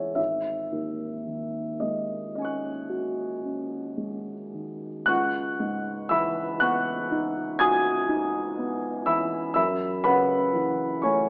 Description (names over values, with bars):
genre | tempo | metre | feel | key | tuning
classical, impressionist solo piano | 35-41 BPM (dotted quarters) | 9/8 | rubato | C# minor | A4 = 440 Hz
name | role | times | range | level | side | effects
warm baby grand piano | solo | 0.0-11.3 s | G#1 to G#6 | -24 LUFS | equal | none
room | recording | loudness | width
moderate concert hall reverb, RT60 1.8 s | recorded in a church or concert hall, AM radio sound | -24 LUFS | side -30 dB against mid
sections
0.0-5.1 A section; 5.1-11.3 A section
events
none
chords
0.2 G#7sus4; 5.1 C#m11; 9.6 F#m7